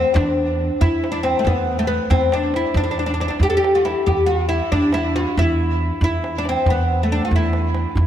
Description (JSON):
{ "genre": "Persian modal ensemble", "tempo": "92 BPM (dotted quarters)", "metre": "6/8", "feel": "straight", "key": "E dastgah shur", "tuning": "A4 = 440 Hz", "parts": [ { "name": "oud", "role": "melody", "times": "0.0-8.1 s", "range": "A3 to A4", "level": "-18 LUFS", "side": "left 1 dB", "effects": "diffuse ambient delay" }, { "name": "upright bass", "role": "bass", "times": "0.0-8.1 s", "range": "E2", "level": "-22 LUFS", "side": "right 1 dB", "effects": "none" }, { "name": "tombak", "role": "percussion", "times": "0.1-8.1 s", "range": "none", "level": "-23 LUFS", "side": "right 1 dB", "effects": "none" } ], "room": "moderate plate reverb, RT60 2.9 s", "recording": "dreamy mix soaked in reverb", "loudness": "-17 LUFS", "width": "side -10 dB against mid", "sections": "0.0-8.1 A section", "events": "drum fill 3.0-3.4", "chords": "none", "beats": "0.16 | 0.81 1.46 | 2.11 2.76 | 3.42 4.07 | 4.72 5.37 | 6.02 6.67 | 7.32 7.97" }